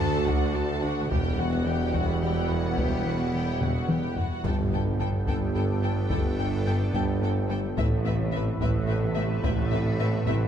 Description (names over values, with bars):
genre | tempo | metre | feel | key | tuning
cinematic, hybrid orchestral and electronic film score | 72 BPM (dotted quarters) | 6/8 | straight | unclear | A4 = 440 Hz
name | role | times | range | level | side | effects
dark symphonic violin section | melody | 0.0-10.3 s | E5 to A5 | -37 LUFS | left 5 dB | none
rich studio violin section | second line | 0.0-10.4 s | F#4 to B4 | -39 LUFS | left 2 dB | none
rich symphonic viola section | accompaniment | 0.0-10.4 s | G3 to F#4 | -39 LUFS | right 3 dB | none
clear trombone section | sustained chords | 0.0-10.5 s | C3 to A3 | -39 LUFS | right 6 dB | none
sweeping resonant pad | sustained chords | 0.0-10.5 s | C3 to G5 | -36 LUFS | left 1 dB | chorus, phaser
warm French horn section | sustained chords | 0.0-10.5 s | B3 to G4 | -37 LUFS | left 3 dB | none
harp-like synth pluck | arpeggios | 0.0-10.4 s | D3 to A4 | -37 LUFS | right 1 dB | none
round analog bass | riff | 0.0-10.4 s | D2 to A3 | -33 LUFS | left 4 dB | none
clear tuba | bass | 0.0-10.5 s | E1 to D2 | -33 LUFS | right 4 dB | none
rich studio double bass section | bass | 0.0-10.5 s | E1 to D2 | -31 LUFS | right 3 dB | none
warm studio cello section | bass | 0.0-10.5 s | D2 to A2 | -32 LUFS | right 1 dB | none
taiko ensemble | drums | 0.0-10.5 s | none | -31 LUFS | left 1 dB | none
impact | sound effects | 4.4-6.1 s | none | -35 LUFS | left 1 dB | none
room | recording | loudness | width
moderate recital hall reverb, RT60 1.4 s | dark, warm production | -24 LUFS | side -9 dB against mid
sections
0.0-4.4 A section; 4.4-10.5 B section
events
drum fill 3.6-4.4, 10.3; impact 4.4-6.1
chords
0.0 D; 1.1 Emadd9; 4.4 Gadd9; 7.8 Amadd9